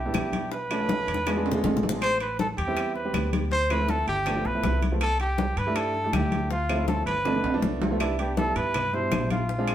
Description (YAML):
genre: Afro-Cuban jazz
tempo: 160 BPM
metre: 4/4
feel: straight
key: C major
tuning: A4 = 439 Hz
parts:
  - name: warm trumpet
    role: melody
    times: 0.0-9.7 s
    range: F4 to C5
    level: -28 LUFS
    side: equal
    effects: none
  - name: upright bass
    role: bass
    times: 0.0-9.7 s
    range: G1 to G2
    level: -30 LUFS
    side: equal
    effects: none
  - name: warm baby grand piano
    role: accompaniment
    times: 0.1-9.7 s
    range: B2 to G4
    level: -30 LUFS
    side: right 1 dB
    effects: none
  - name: bongos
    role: percussion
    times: 0.1-9.7 s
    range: none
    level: -35 LUFS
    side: left 3 dB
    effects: none
  - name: claves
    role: percussion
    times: 0.1-9.7 s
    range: none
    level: -39 LUFS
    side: left 4 dB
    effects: none
  - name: congas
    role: percussion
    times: 0.1-9.7 s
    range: none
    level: -31 LUFS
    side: left 3 dB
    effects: none
  - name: timbales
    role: percussion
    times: 0.1-9.7 s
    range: none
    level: -33 LUFS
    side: right 5 dB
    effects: none
room: wet studio reverb, RT60 0.7 s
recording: band playing live in one room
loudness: -23 LUFS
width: side -11 dB against mid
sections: 0.0-8.0 A section; 8.0-9.7 B section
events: drum fill 0.9-2.0, 7.3-8.0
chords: 0.0 Em7; 0.5 Bm7b5; 1.3 E7b9; 2.0 Am9; 3.5 Dm9; 4.3 G9; 5.0 C69; 6.5 Dm7; 7.3 G7; 8.0 Cmaj7